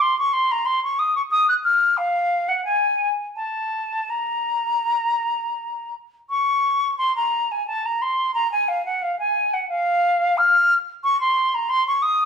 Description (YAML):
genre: classical, baroque-style fantasia for unaccompanied flute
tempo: 80-94 BPM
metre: 3/4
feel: rubato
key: Bb minor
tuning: A4 = 440 Hz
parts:
  - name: concert flute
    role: solo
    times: 0.0-12.3 s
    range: F5 to Gb6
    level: -18 LUFS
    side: left 1 dB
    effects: none
room: wet stone room reverb, RT60 1.0 s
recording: heard from further back in the room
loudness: -19 LUFS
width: side -6 dB against mid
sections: 0.0-6.3 A section; 6.3-12.3 B section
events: none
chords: none